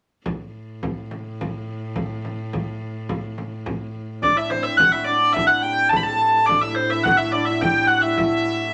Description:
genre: medieval dance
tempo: 106 BPM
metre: 2/4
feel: straight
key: A dorian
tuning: A4 = 441 Hz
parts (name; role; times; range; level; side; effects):
- warm viola da gamba; drone; 0.3-8.7 s; A2; -34 LUFS; equal; none
- frame drum; percussion; 0.3-8.4 s; none; -31 LUFS; equal; none
- rich hurdy-gurdy; melody; 4.2-8.7 s; C5 to B5; -20 LUFS; equal; none
- hammered dulcimer; second line; 4.2-8.7 s; C4 to A4; -28 LUFS; equal; none
room: moderate studio ambience, RT60 0.5 s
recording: none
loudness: -21 LUFS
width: mono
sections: 0.3-4.8 A section; 4.8-8.7 B section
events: none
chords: none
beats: | 0.26 0.83 | 1.39 1.96 | 2.53 3.09 | 3.66 4.22 | 4.79 5.36 | 5.92 6.49 | 7.05 7.62 | 8.18

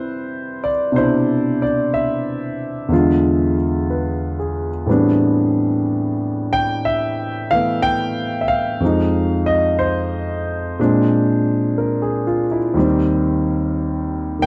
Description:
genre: solo jazz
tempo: 61 BPM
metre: 4/4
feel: swing 67% on 8ths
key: unclear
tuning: A4 = 439 Hz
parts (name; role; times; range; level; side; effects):
- warm concert grand piano; solo; 0.0-14.5 s; Eb2 to G5; -19 LUFS; equal; none
room: moderate studio reverb, RT60 0.5 s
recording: dark, warm production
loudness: -19 LUFS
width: mono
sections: 0.0-4.9 A section; 4.9-14.5 B section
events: none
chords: 0.0 Cmaj9; 2.9 E7b9; 4.9 Am11; 8.8 Fm7; 10.8 Bb9; 12.8 Eb6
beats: | 0.94 1.92 2.91 3.89 | 4.88 5.86 6.85 7.83 | 8.82 9.80 10.79 11.77 | 12.76 13.74

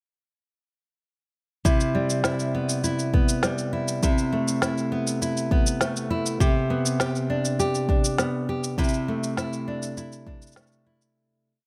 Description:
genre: folktronica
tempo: 101 BPM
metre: 4/4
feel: straight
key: C major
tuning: A4 = 440 Hz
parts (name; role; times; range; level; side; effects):
- nylon-string guitar; arpeggios; 1.6-11.7 s; C3 to G4; -27 LUFS; equal; digital delay
- electronic kick drum; drums; 1.7-10.4 s; none; -25 LUFS; equal; studio ambience
- electronic shaker and snare drum; drums; 1.7-11.1 s; none; -31 LUFS; equal; studio ambience
room: light reverb, digital ambience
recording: none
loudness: -25 LUFS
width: mono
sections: 1.7-11.2 groove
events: fade-out 8.0-11.2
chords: 1.7 Cmaj7; 4.0 Amadd9/C; 6.4 G/C; 8.8 Dsus2/C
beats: | 1.65 2.25 2.84 3.43 | 4.03 4.62 5.22 5.81 | 6.41 7.00 7.59 8.19 | 8.78 9.38 9.97 10.56

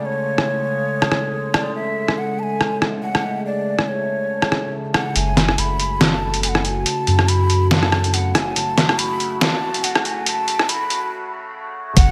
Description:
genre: deep dubstep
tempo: 141 BPM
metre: 4/4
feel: swing 55% on 16ths, half-time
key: F# minor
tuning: A4 = 440 Hz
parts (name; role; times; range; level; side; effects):
- breathy ney; melody; 0.0-12.1 s; C#5 to B5; -26 LUFS; equal; dub echo
- overtone-sweeping drone; sustained chords; 0.0-12.1 s; C#3 to F#4; -28 LUFS; equal; chorus, built-in reverb
- trip hop sampler-style drum kit; drums; 0.4-12.1 s; hi-hat, rim click, snare drum; -22 LUFS; equal; studio ambience
- soft dub sub bass; bass; 5.2-12.1 s; F#1 to F#2; -23 LUFS; equal; tube saturation
- electronic kick drum; drums; 12.0-12.1 s; none; -14 LUFS; equal; overdrive, studio ambience
- flickering grainy texture; texture; 12.1 s; F#4 to F#5; -39 LUFS; equal; none
room: light reverb, digital ambience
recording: high-pass filter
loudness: -19 LUFS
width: mono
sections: 0.0-5.2 A section; 5.2-12.0 B section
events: build-up 5.2-12.0; break 11.1-12.0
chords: 0.0 F#m (rootless); 5.2 F#m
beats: | 0.05 0.48 0.90 1.33 | 1.75 2.18 2.60 3.03 | 3.46 3.88 4.31 4.73 | 5.16 5.58 6.01 6.43 | 6.86 7.29 7.71 8.14 | 8.56 8.99 9.41 9.84 | 10.27 10.69 11.12 11.54 | 11.97

